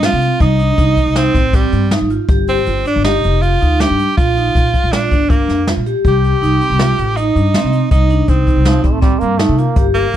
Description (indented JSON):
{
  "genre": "progressive instrumental, band music in an uneven meter",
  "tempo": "160 BPM",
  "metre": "5/4",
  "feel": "straight",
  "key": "C dorian",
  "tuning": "A4 = 440 Hz",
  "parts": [
    { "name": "edgy tenor saxophone", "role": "melody", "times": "0.0-10.2 s", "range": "G3 to G4", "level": "-18 LUFS", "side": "right 3 dB", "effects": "none" },
    { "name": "vibraphone with medium hard mallets", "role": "arpeggios", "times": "0.0-10.2 s", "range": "C4 to G4", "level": "-18 LUFS", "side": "right 1 dB", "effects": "none" },
    { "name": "upright bass", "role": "bass", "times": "0.0-10.2 s", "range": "F1 to C3", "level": "-16 LUFS", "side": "left 1 dB", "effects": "none" },
    { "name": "jazz brush drum kit", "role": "drums", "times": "0.0-10.2 s", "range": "hi-hat, kick drum, snare drum", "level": "-16 LUFS", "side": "equal", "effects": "none" },
    { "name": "brilliant trombone", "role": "second line", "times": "8.7-9.9 s", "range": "F3 to Bb3", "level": "-20 LUFS", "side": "right 4 dB", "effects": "none" }
  ],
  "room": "light reverb",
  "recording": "dark, warm production",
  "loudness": "-11 LUFS",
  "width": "side -11 dB against mid",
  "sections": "0.0-10.2 A section",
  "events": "none",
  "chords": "0.0 Cm; 2.3 G5; 4.2 Bb; 6.1 Cm"
}